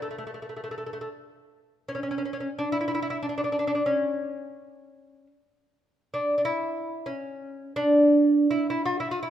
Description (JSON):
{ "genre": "Persian modal ensemble", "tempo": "free time", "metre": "none", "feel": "none", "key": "unclear", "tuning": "A4 = 439 Hz", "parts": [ { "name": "lute", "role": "solo", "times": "0.0-9.3 s", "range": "A3 to F4+45c", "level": "-24 LUFS", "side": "equal", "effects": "none" } ], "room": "moderate recital hall reverb, RT60 1.6 s", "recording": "minimal, uncompressed stereo recording", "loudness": "-23 LUFS", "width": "side -11 dB against mid", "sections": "0.0-1.5 A section; 1.5-9.3 A section", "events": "none", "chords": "none", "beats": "free time" }